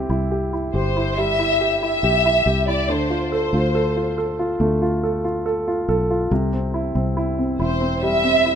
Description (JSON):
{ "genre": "pop", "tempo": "70 BPM", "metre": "4/4", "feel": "straight", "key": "C major", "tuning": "A4 = 440 Hz", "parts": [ { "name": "warm baby grand piano", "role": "accompaniment", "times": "0.0-8.6 s", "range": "C3 to A4", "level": "-22 LUFS", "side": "right 1 dB", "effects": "none" }, { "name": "fingered electric bass", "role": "bass", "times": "0.0-8.6 s", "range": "E1 to D2", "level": "-24 LUFS", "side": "equal", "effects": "none" }, { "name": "warm studio violin section", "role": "melody", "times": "0.8-8.6 s", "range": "C5 to E5", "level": "-20 LUFS", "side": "equal", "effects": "none" } ], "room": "light reverb", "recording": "rough home demo mix", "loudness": "-18 LUFS", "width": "side -8 dB against mid", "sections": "0.0-8.6 A section", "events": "none", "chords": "0.0 Cmaj7; 2.9 Dm7; 6.3 C" }